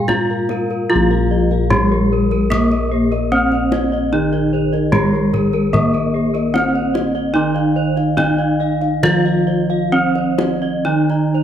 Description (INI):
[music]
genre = Javanese gamelan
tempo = 61-74 BPM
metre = 4/4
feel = straight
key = Bb slendro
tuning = A4 = 438 Hz
[part]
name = gamelan-type bronze metallophone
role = melody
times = 0.0-11.4 s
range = Ab3-40c to F4+20c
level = -18 LUFS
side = equal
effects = none
[part]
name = gamelan-type bronze metallophone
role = accompaniment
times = 0.0-11.4 s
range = Eb3-20c to Bb3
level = -21 LUFS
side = right 3 dB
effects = none
[part]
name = gamelan-type bronze metallophone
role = arpeggios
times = 0.0-11.4 s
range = Ab4-40c to F5+20c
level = -26 LUFS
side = right 3 dB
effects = none
[part]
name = gamelan-type bossed gongs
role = bass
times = 0.0-11.4 s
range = Bb1 to F4+20c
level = -22 LUFS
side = left 1 dB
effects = none
[part]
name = kendang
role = percussion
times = 0.1-11.2 s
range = none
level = -24 LUFS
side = left 2 dB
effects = none
[part]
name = gamelan-type bossed gongs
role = arpeggios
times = 0.3-11.4 s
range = Ab4-40c to Bb5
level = -24 LUFS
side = left 9 dB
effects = none
[sound]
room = moderate scoring stage reverb, RT60 1.6 s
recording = close, detailed microphones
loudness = -14 LUFS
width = side -9 dB against mid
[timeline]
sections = 0.9-11.4 A section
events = none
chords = none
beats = 0.09 | 0.90 1.71 2.51 3.32 | 4.13 4.94 5.74 6.55 | 7.36 8.18 9.04 9.93 | 10.86